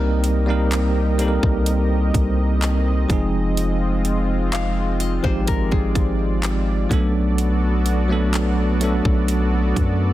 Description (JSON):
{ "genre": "contemporary R&B", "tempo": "63 BPM", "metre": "4/4", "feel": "straight", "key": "unclear", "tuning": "A4 = 439 Hz", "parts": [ { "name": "bell-like tine electric piano", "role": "accompaniment", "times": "0.0-10.1 s", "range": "F3 to Bb4", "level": "-22 LUFS", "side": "right 1 dB", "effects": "fast stereo tremolo" }, { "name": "warm analog pad", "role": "sustained chords", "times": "0.0-10.1 s", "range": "Ab3 to Eb5", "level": "-28 LUFS", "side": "equal", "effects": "chorus" }, { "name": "long sustained 808-style bass", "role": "bass", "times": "0.0-10.1 s", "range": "F1 to F#2", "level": "-21 LUFS", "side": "equal", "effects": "none" }, { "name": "trap drum kit", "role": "drums", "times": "0.2-10.0 s", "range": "handclaps, hi-hat, kick drum", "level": "-23 LUFS", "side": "equal", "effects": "none" }, { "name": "nylon-string guitar", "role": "arpeggios", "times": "4.5-6.9 s", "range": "Ab4 to F5", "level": "-30 LUFS", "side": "left 9 dB", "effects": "tape echo" } ], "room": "digital ambience", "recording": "dense, heavily limited modern master", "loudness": "-17 LUFS", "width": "side -14 dB against mid", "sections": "0.0-10.1 A section", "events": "none", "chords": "0.0 Cm7; 3.1 Fm7; 6.9 Bm7" }